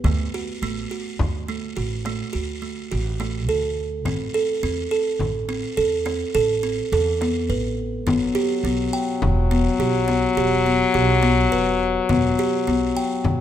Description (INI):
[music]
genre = contemporary instrumental, chamber music in an uneven meter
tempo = 105 BPM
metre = 7/4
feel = straight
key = unclear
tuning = A4 = 440 Hz
[part]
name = buzzing kalimba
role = arpeggios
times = 0.0-13.4 s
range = A3 to G5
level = -22 LUFS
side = right 1 dB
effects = none
[part]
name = upright bass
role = bass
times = 0.0-13.4 s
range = E1 to E2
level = -25 LUFS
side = right 1 dB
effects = none
[part]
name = frame drum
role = percussion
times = 0.0-13.4 s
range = none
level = -28 LUFS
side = left 4 dB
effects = none
[part]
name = clear French horn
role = second line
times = 8.1-13.4 s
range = F#3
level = -22 LUFS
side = left 6 dB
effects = none
[sound]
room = moderate recital hall reverb, RT60 1.3 s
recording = close, detailed microphones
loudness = -19 LUFS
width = side -10 dB against mid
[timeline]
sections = 0.0-13.4 A section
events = none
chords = 0.0 D; 4.1 Amadd9; 8.1 Em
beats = | 0.04 0.61 1.19 1.76 2.33 2.91 3.48 | 4.05 4.63 5.20 5.78 6.35 6.92 7.50 | 8.07 8.64 9.22 9.79 10.37 10.94 11.51 | 12.09 12.66 13.24